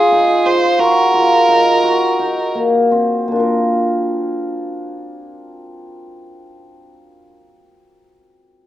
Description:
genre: contemporary instrumental, contemporary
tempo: 164-180 BPM (eighths)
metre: 7/8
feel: straight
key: unclear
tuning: A4 = 440 Hz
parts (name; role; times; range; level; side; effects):
- rich violin; melody; 0.0-2.6 s; Ab4 to C5; -16 LUFS; right 2 dB; none
- cimbalom; arpeggios; 0.0-7.6 s; Bb3 to Bb4; -15 LUFS; equal; none
room: moderate recital hall reverb, RT60 1.3 s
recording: worn, warbling old tape, cassette tape, warbly pitch drift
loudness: -12 LUFS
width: side -13 dB against mid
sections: 0.0-3.3 A section; 3.3-5.8 B section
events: slowing down 0.0-3.3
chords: 0.0 Fm; 0.8 Ebm; 3.3 Bb

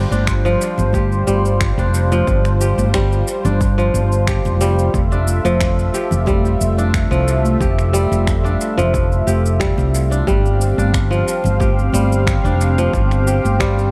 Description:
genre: organic downtempo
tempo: 90 BPM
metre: 4/4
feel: straight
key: unclear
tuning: A4 = 440 Hz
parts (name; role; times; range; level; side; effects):
- warm analog pad; sustained chords; 0.0-13.9 s; G3 to F5; -25 LUFS; equal; chorus, sidechain pumping
- kora; arpeggios; 0.0-13.9 s; F3 to G4; -23 LUFS; equal; tape echo
- woody fretless electric bass; bass; 0.0-13.9 s; F1 to C2; -19 LUFS; equal; none
- electronic cabasa and finger snaps; drums; 0.1-13.9 s; none; -30 LUFS; equal; overdrive, dub echo
- congas; percussion; 0.1-13.6 s; none; -30 LUFS; equal; none
- electronic kick drum; drums; 0.3-13.7 s; none; -23 LUFS; equal; overdrive
- drifting glass-harmonics texture; texture; 10.8-13.9 s; C4 to C5; -35 LUFS; equal; none
room: light reverb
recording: echo-heavy mix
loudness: -16 LUFS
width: mono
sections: 0.0-13.9 A section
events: none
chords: 0.0 G7sus4; 4.9 Fmaj7; 10.3 G7sus4

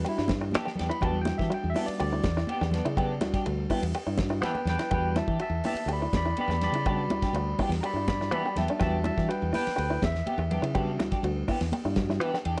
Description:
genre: afrobeat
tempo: 123 BPM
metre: 4/4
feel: straight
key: E dorian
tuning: A4 = 439 Hz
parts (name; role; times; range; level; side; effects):
- barky tine electric piano; accompaniment; 0.0-12.2 s; G3 to B5; -34 LUFS; equal; overdrive
- open-back banjo; arpeggios; 0.0-12.6 s; D4 to G4; -37 LUFS; equal; none
- fingered electric bass; bass; 0.0-12.6 s; D2 to E3; -32 LUFS; equal; none
- congas; percussion; 0.0-12.1 s; none; -38 LUFS; equal; none
- damped 70s drum kit; drums; 0.1-12.6 s; hi-hat, kick drum, ride cymbal, snare drum; -36 LUFS; equal; none
- semi-hollow electric guitar; stabs; 0.2-12.6 s; B3 to G4; -38 LUFS; equal; analog chorus
room: moderate studio reverb, RT60 0.6 s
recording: nothing above 10.5 kHz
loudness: -28 LUFS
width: mono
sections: 0.0-12.6 A section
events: tine electric piano solo 0.0-12.6; drum fill 11.7-12.6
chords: 0.0 Em7

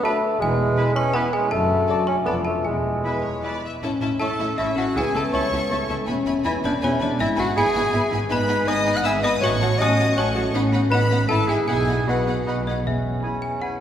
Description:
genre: cinematic, playful, whimsical film cue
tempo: 160 BPM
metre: 3/4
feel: straight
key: A major, E major from 8.3 s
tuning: A4 = 436 Hz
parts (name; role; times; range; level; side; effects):
- trough xylophone with plastic mallets; melody; 0.0-13.8 s; C#5 to F#6; -30 LUFS; left 1 dB; none
- clear oboe; second line; 0.0-13.8 s; B4 to A5; -35 LUFS; right 1 dB; none
- hollow flute section; second line; 0.0-13.7 s; A5 to C#6; -35 LUFS; equal; none
- rich studio viola section; accompaniment; 0.0-13.8 s; F#3 to A4; -31 LUFS; right 1 dB; none
- warm bassoon; accompaniment; 0.0-13.8 s; G#3 to E4; -27 LUFS; equal; none
- mellow French horn section; sustained chords; 0.0-13.8 s; G#3 to B4; -28 LUFS; left 3 dB; none
- warm studio violin section; melody; 0.1-13.8 s; B4 to F#6; -32 LUFS; left 3 dB; none
- clear clarinet; second line; 0.1-13.8 s; C#4 to F#5; -26 LUFS; equal; none
- rich studio violin section; second line; 0.1-13.8 s; G#4 to B5; -32 LUFS; left 2 dB; none
- rich studio double bass section; bass; 0.4-13.2 s; E1 to C#2; -28 LUFS; right 2 dB; none
- warm studio cello section; bass; 0.4-13.2 s; C#2 to B2; -29 LUFS; right 1 dB; none
room: wet church reverb, RT60 3.3 s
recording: recorded in a church or concert hall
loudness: -19 LUFS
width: side -10 dB against mid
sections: 0.0-3.8 A section; 3.8-12.9 B section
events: none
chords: 0.4 E; 1.5 D/F#; 2.3 Dm/F; 2.7 E; 3.8 A; 5.0 A/C#; 6.1 E; 7.2 E/G#; 8.3 G#m; 9.4 F#m/A; 10.5 B7/A; 11.3 E/G#; 11.7 B; 12.9 E

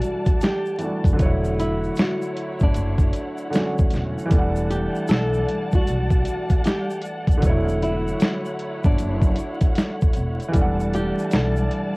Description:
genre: lo-fi hip hop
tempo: 77 BPM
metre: 4/4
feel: swing 63% on 16ths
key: E dorian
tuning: A4 = 439 Hz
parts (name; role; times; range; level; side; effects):
- flamenco guitar; melody; 0.0-11.9 s; D4 to A4; -29 LUFS; equal; low-pass filter, cassette tape, tape echo
- felt-muted upright piano; accompaniment; 0.0-12.0 s; D3 to F#5; -26 LUFS; right 1 dB; cassette tape, low-pass filter
- dark symphonic string section; sustained chords; 0.0-12.0 s; G3 to A5; -32 LUFS; equal; low-pass filter, cassette tape
- boom bap sampler-style drum kit; drums; 0.0-11.9 s; hi-hat, kick drum, snare drum; -20 LUFS; equal; vintage 12-bit sampler grit, cassette tape
- egg shaker; percussion; 0.0-11.7 s; none; -49 LUFS; left 2 dB; none
- upright bass; bass; 1.0-11.7 s; E1 to B1; -25 LUFS; equal; none
room: moderate booth ambience, RT60 0.2 s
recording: home recording on cassette, vinyl crackle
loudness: -19 LUFS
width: side -26 dB against mid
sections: 0.0-12.0 A section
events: none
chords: 0.0 Em11; 1.2 Dmaj9/E; 4.3 Em11; 7.4 Dmaj9/E; 10.5 Em11

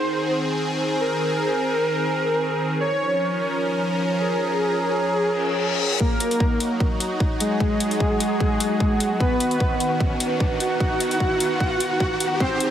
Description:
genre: heavy wobble dubstep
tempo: 150 BPM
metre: 4/4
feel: swing 54% on 16ths, half-time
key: Eb minor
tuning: A4 = 443 Hz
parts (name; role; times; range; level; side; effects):
- soft supersaw; melody; 0.0-12.7 s; Ab3 to F#5; -24 LUFS; equal; digital delay
- supersaw pad; sustained chords; 0.0-12.7 s; Eb3 to Bb4; -26 LUFS; equal; phaser, sidechain pumping
- warbly tape-like pad; texture; 0.0-12.7 s; Eb4 to Bb5; -29 LUFS; equal; chorus, built-in reverb, sidechain pumping
- reverse cymbal and riser; sound effects; 5.3-12.7 s; none; -30 LUFS; left 2 dB; none
- electronic kick drum; drums; 6.0-12.5 s; none; -23 LUFS; equal; none
- electronic hi-hat; drums; 6.2-12.7 s; none; -27 LUFS; left 2 dB; high-pass filter on hats
room: moderate lush hall reverb, RT60 1.7 s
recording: heavily compressed radio sound, high-pass filter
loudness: -20 LUFS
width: side -10 dB against mid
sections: 0.0-6.0 A section; 6.0-12.7 B section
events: reverse cymbal 5.3-6.0; build-up 6.0-12.7; riser 6.0-12.7; drum fill 12.4-12.7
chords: 0.0 Ab; 2.8 Bbm; 6.0 Ebm; 9.2 B/D#

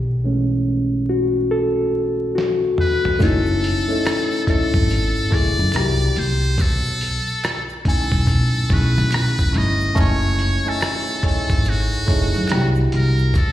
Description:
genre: R&B, neo-soul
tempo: 71 BPM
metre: 4/4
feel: swing 64% on 16ths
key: F# dorian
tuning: A4 = 438 Hz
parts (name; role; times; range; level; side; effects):
- upright bass; bass; 0.0-13.5 s; F#1 to B2; -20 LUFS; equal; none
- reed electric piano; accompaniment; 0.2-13.4 s; C#3 to G#5; -21 LUFS; left 1 dB; overdrive, phaser, slapback echo
- dusty soul sampler-style drum kit; drums; 2.4-13.5 s; hi-hat, kick drum, rim click, snare drum, toms; -20 LUFS; equal; none
- trumpet with metal mute; melody; 2.8-13.5 s; F#4 to D#5; -24 LUFS; equal; slapback echo
- tube shaker and finger snaps; percussion; 3.2-13.5 s; none; -42 LUFS; right 5 dB; none
room: light reverb, small room ambience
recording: live gig heard through the venue's PA, recital hall reverb, vinyl crackle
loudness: -16 LUFS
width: side -13 dB against mid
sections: 0.0-3.2 A section; 3.2-13.5 B section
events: reed electric piano solo 0.0-3.2; drum fill 2.4-3.2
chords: 0.0 B13sus4; 3.2 F#m9; 5.7 C9; 6.6 B13sus4; 10.0 F#m9; 12.5 C9

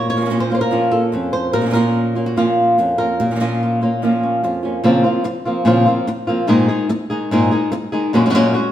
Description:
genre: flamenco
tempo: 146 BPM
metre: 4/4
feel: straight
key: Bb harmonic minor, Bb minor from 4.8 s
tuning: A4 = 440 Hz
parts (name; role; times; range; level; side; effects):
- flamenco guitar; melody; 0.0-8.7 s; F2 to Db5; -15 LUFS; equal; none
- flamenco guitar; stabs; 0.2-4.8 s; Bb2 to F4; -21 LUFS; right 2 dB; none
room: wet stone room reverb, RT60 1.3 s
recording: band playing live in one room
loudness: -14 LUFS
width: side -11 dB against mid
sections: 0.0-4.8 A section; 4.8-8.7 B section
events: none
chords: 0.0 Bbm; 4.8 Bbmadd9; 6.5 Absus2; 8.1 Gbadd9

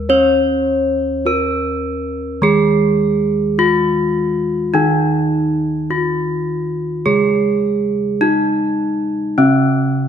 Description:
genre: Javanese gamelan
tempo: 52 BPM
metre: 4/4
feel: straight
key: Eb slendro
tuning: A4 = 439 Hz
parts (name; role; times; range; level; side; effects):
- gamelan-type bronze metallophone; melody; 0.0-10.1 s; Db4-40c to Db5-40c; -16 LUFS; equal; none
- gamelan-type bronze metallophone; accompaniment; 0.0-10.1 s; Db3-40c to Db4-40c; -19 LUFS; right 1 dB; none
- gamelan-type bossed gongs; bass; 0.0-10.1 s; Eb2 to Db5-40c; -22 LUFS; left 1 dB; none
room: moderate scoring stage reverb, RT60 1.7 s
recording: none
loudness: -14 LUFS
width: side -8 dB against mid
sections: 0.0-10.1 A section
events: none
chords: none

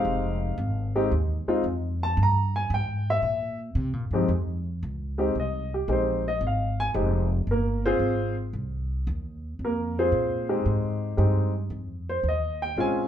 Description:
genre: jazz piano trio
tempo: 113 BPM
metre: 4/4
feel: swing 69% on 8ths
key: F minor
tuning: A4 = 440 Hz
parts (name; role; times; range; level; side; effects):
- warm baby grand piano; melody; 0.0-13.1 s; F2 to Bb5; -26 LUFS; left 1 dB; none
- upright bass; bass; 0.0-13.1 s; F1 to C3; -27 LUFS; equal; none
room: wet club reverb, RT60 0.8 s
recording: heard from further back in the room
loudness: -24 LUFS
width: side -10 dB against mid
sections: 0.0-4.3 A section; 4.3-13.1 A section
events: grand piano solo 0.0-4.3, 4.3-13.1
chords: 0.1 Fm7; 2.2 C7 (rootless); 4.3 Fm7

